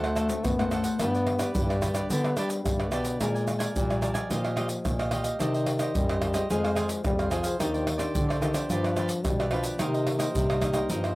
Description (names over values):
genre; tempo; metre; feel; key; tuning
samba and choro; 109 BPM; 4/4; straight; C minor; A4 = 440 Hz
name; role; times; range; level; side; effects
mellow trombone; second line; 0.0-11.2 s; D3 to B3; -30 LUFS; left 2 dB; none
cavaquinho; accompaniment; 0.0-11.2 s; D4 to Ab5; -34 LUFS; right 2 dB; none
nylon-string guitar; accompaniment; 0.0-11.2 s; G2 to Eb5; -34 LUFS; left 2 dB; none
warm bass clarinet; bass; 0.0-11.2 s; D2 to D3; -31 LUFS; equal; none
tube shaker, pandeiro, tamborim and surdo; percussion; 0.0-11.2 s; none; -30 LUFS; right 1 dB; none
room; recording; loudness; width
little or no reverb; recorded outdoors, with no room sound; -24 LUFS; side -19 dB against mid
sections
0.0-11.2 A section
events
none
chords
0.0 D7; 1.0 G; 3.2 Bb7; 4.3 Ebadd9/Bb; 5.4 Cmadd9; 6.5 Fm; 7.6 Cmadd9/Eb; 8.7 G7; 9.8 Cm7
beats
0.45 | 1.00 1.55 2.10 2.65 | 3.21 3.75 4.31 4.86 | 5.41 5.96 6.51 7.06 | 7.61 8.15 8.70 9.25 | 9.80 10.35 10.90